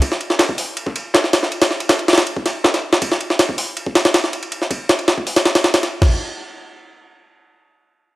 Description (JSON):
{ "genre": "drum and bass, jungle", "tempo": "160 BPM", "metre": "4/4", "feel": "straight", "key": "none", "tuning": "none", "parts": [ { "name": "breakbeat sampler-style drum kit", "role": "drums", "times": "0.0-2.9 s", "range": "hi-hat, snare drum, tambourine", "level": "-27 LUFS", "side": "left 2 dB", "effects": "none" }, { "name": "jungle sampler-style drum kit", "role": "drums", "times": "0.0-6.1 s", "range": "crash cymbal, hi-hat, kick drum, ride cymbal, snare drum", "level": "-15 LUFS", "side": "equal", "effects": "high-pass filter on kick, studio reverb, high-pass filter on cymbals, high-pass filter on snare, high-pass filter on hats" } ], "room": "light reverb", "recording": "dry, gritty hardware recording", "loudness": "-15 LUFS", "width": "side -18 dB against mid", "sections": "0.0-6.0 A section; 6.0-8.2 B section", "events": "none", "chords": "none" }